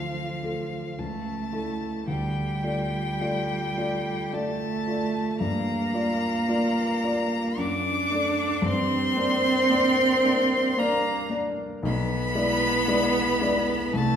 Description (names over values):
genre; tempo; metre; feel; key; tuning
classical, slow romantic movement for piano trio; 56 BPM; 3/4; rubato; unclear; A4 = 440 Hz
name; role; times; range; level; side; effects
rich violin; melody; 0.0-14.2 s; F5 to D6; -29 LUFS; left 4 dB; none
clear cello; second line; 0.0-14.2 s; F3 to D4; -26 LUFS; right 3 dB; none
dark grand piano; accompaniment; 0.0-14.2 s; B1 to D5; -28 LUFS; left 2 dB; none
room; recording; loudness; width
wet recital hall reverb, RT60 1.5 s; heard from further back in the room; -23 LUFS; side -8 dB against mid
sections
0.0-14.2 A section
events
none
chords
0.0 Dm; 1.0 A/C#; 2.1 Dm; 5.4 Gm7; 7.6 D/F#; 8.6 Gm; 11.8 E7/B